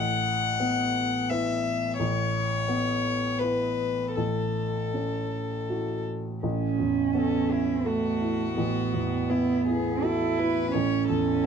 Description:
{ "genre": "neoclassical piano and strings", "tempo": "77-87 BPM", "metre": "3/4", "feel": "rubato", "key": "A major", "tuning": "A4 = 445 Hz", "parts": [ { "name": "rich violin", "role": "melody", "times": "0.0-11.5 s", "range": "E4 to F#5", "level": "-30 LUFS", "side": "left 6 dB", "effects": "none" }, { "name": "dark grand piano", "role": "accompaniment", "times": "0.0-11.5 s", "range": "A1 to B4", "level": "-27 LUFS", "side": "equal", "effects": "none" }, { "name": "dark cello", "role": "second line", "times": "6.4-11.5 s", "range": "A3 to E4", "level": "-27 LUFS", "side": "right 9 dB", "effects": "none" } ], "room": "moderate large studio reverb, RT60 0.9 s", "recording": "dark, warm production", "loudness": "-24 LUFS", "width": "side -7 dB against mid", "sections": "0.0-6.4 A section; 6.4-11.5 A section", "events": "none", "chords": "0.0 Aadd9; 4.2 F#m7/A; 6.4 Aadd9; 8.6 Esus2/A; 10.7 A", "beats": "0.60 1.30 | 1.99 2.69 3.40 | 4.16 4.93 5.69 | 6.44 7.15 7.86 | 8.58 9.29 10.04 | 10.74 11.44" }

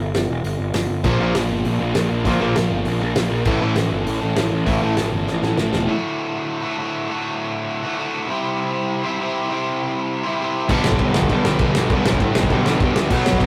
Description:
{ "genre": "punk rock", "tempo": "199 BPM", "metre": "4/4", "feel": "straight", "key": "D mixolydian from 5.9 s", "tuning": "A4 = 440 Hz", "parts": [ { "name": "fuzz picked electric bass", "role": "bass", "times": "0.0-5.9, 10.7-13.5 s", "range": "E1 to A2", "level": "-24 LUFS", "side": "equal", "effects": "overdrive" }, { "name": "loose indie drum kit", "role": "drums", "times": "0.1-5.8, 10.7-13.5 s", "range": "crash cymbal, hi-hat, kick drum, ride cymbal, snare drum", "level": "-24 LUFS", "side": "equal", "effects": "none" }, { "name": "distorted electric guitar", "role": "riff", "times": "1.0-13.5 s", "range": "D2 to C5", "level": "-25 LUFS", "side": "equal", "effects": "distortion" }, { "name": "overdriven semi-hollow guitar", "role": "riff", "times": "1.0-4.9, 10.7-13.5 s", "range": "G2 to B3", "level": "-25 LUFS", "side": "equal", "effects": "none" }, { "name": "thick fuzz guitar", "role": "riff", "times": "1.0-5.9, 10.7-13.5 s", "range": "G2 to Bb4", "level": "-26 LUFS", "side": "equal", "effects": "distortion" } ], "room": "moderate booth ambience, RT60 0.2 s", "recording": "rough rehearsal-room recording, warm saturation", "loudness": "-20 LUFS", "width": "mono", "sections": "0.0-5.9 A section; 5.9-13.5 B section", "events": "half time 0.0-5.9; drum fill 5.3-5.9", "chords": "0.0 Em; 1.0 Bb; 3.5 A; 5.9 D; 8.3 C; 10.7 G/B", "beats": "0.14 0.44 0.75 | 1.05 1.35 1.65 1.95 | 2.26 2.56 2.86 3.16 | 3.47 3.77 4.07 4.37 | 4.68 4.98 5.28 5.58 | 5.88 6.19 6.49 6.79 | 7.09 7.39 7.69 7.99 | 8.29 8.59 8.89 9.20 | 9.50 9.80 10.10 10.40 | 10.70 11.00 11.30 11.60 | 11.90 12.20 12.50 12.80 | 13.10 13.40" }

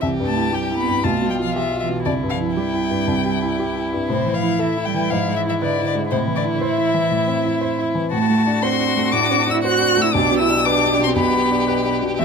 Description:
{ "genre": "quick classical-period movement for piano quartet", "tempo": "118 BPM", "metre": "4/4", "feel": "straight", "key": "C major, G major from 8.1 s", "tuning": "A4 = 442 Hz", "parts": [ { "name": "warm violin", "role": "melody", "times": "0.0-12.2 s", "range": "C5 to F#6", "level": "-22 LUFS", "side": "left 6 dB", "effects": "none" }, { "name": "clear violin", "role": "second line", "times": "0.0-12.2 s", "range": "E4 to G4", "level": "-27 LUFS", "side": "left 1 dB", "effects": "none" }, { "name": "dark cello", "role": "second line", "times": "0.0-12.2 s", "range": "C3 to F#4", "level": "-23 LUFS", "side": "right 12 dB", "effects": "none" }, { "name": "clear grand piano", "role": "accompaniment", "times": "0.0-12.2 s", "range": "B1 to C5", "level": "-21 LUFS", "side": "left 1 dB", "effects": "none" } ], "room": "light reverb", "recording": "close, detailed microphones", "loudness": "-17 LUFS", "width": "side -5 dB against mid", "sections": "0.0-12.2 A section", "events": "none", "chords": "0.0 C; 1.0 G7/B; 2.1 C; 4.1 A5; 5.1 E/G#; 6.1 Am; 8.1 D7/A; 10.1 G/B", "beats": "| 0.02 0.53 1.04 1.55 | 2.06 2.57 3.08 3.58 | 4.09 4.60 5.10 5.61 | 6.11 6.61 7.12 7.62 | 8.12 8.62 9.13 9.64 | 10.14 10.65 11.17 11.68 | 12.19" }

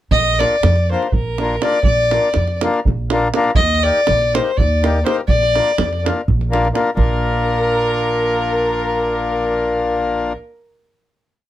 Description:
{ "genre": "balkan folk, Balkan wedding band", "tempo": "247 BPM (eighths)", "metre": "7/8", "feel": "straight", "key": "Bb major", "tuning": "A4 = 441 Hz", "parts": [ { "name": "dark fiddle", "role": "melody", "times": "0.1-10.3 s", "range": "Bb4 to Eb5", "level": "-18 LUFS", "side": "left 1 dB", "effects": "none" }, { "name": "upright bass", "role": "bass", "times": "0.1-10.3 s", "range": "Bb1 to F2", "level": "-20 LUFS", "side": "right 1 dB", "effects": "none" }, { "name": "davul", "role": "percussion", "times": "0.1-7.2 s", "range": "none", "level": "-20 LUFS", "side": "right 2 dB", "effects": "none" }, { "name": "accordion", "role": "accompaniment", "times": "0.4-10.3 s", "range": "Bb3 to Bb4", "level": "-19 LUFS", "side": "left 3 dB", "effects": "none" } ], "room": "light reverb", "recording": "close, detailed microphones", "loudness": "-14 LUFS", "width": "side -13 dB against mid", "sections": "0.1-7.0 A section; 7.0-10.3 final chord", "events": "none", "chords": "0.1 Bb; 3.6 Eb; 5.3 Bb", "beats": "| 0.11 0.36 0.61 0.85 1.10 1.35 1.60 | 1.84 2.09 2.34 2.59 2.83 3.08 3.32 | 3.57 3.81 4.06 4.30 4.55 4.79 5.04 | 5.28 5.52 5.76 6.00 6.25 6.49 6.73 | 6.97 7.21 7.45 7.69 7.93 8.17 8.41 | 8.65 8.89 9.13 9.37 9.61 9.85 10.09" }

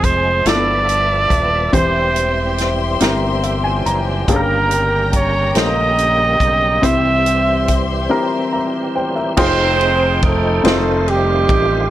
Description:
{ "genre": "slow gospel", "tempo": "47 BPM (dotted quarters)", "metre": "6/8", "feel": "straight", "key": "unclear", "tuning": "A4 = 442 Hz", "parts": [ { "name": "clear trumpet", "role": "melody", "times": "0.0-7.8 s", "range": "Bb4 to E5", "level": "-16 LUFS", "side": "right 2 dB", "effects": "plate reverb" }, { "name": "warm baby grand piano", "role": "accompaniment", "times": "0.0-11.9 s", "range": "G2 to Bb5", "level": "-21 LUFS", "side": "left 2 dB", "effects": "plate reverb" }, { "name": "tonewheel organ", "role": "sustained chords", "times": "0.0-11.9 s", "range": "Db3 to G5", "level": "-24 LUFS", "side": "right 2 dB", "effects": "slow rotary speaker, chorus vibrato, plate reverb" }, { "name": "warm studio string section", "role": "sustained chords", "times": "0.0-9.4 s", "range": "Db4 to C6", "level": "-25 LUFS", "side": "left 3 dB", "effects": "plate reverb" }, { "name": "modern bright fingered electric bass", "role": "bass", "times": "0.0-11.9 s", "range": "Eb1 to C2", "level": "-21 LUFS", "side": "equal", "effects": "none" }, { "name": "natural country drum kit", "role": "drums", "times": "0.0-11.7 s", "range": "crash cymbal, hi-hat, kick drum, ride cymbal, snare drum", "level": "-19 LUFS", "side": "equal", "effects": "none" }, { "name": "mellow horn section", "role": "melody", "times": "9.4-11.9 s", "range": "G3 to C5", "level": "-16 LUFS", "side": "right 3 dB", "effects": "plate reverb" } ], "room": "light reverb", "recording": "none", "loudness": "-13 LUFS", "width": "side -13 dB against mid", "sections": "0.0-9.4 A section; 9.4-11.9 B section", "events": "grand piano fill 3.0-4.3; break 8.1-9.4", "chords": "0.5 G13; 1.7 C/E; 4.3 Gdim; 6.8 C; 9.4 Fm9; 10.6 F7", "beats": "0.46 | 1.74 3.01 | 4.28 5.56 | 6.83 8.10 | 9.37 10.64" }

